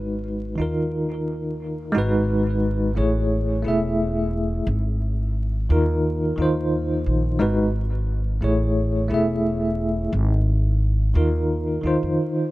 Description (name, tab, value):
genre	trip hop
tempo	88 BPM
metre	4/4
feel	swing 56% on 16ths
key	G# phrygian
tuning	A4 = 440 Hz
part	bell-like tine electric piano	accompaniment	0.0-12.5 s	D#3 to E5	-22 LUFS	equal	fast stereo tremolo, tape echo
part	upright bass	bass	0.0-12.2 s	E1 to E#2	-23 LUFS	equal	none
room	light reverb, small room ambience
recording	vinyl crackle, low-pass filter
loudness	-20 LUFS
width	side -18 dB against mid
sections	0.0-1.9 A section; 1.9-12.5 B section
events	filter sweep 0.0-1.9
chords	0.0 G#m7; 0.6 D#sus2; 1.9 G#m7; 3.3 Amaj7; 4.7 G#5; 6.0 D#sus2; 7.4 G#m7; 8.8 Amaj7; 10.1 G#5; 11.5 D#sus2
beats	0.58 1.26 | 1.95 2.63 3.31 3.99 | 4.67 5.36 6.04 6.72 | 7.40 8.08 8.77 9.45 | 10.13 10.81 11.49 12.17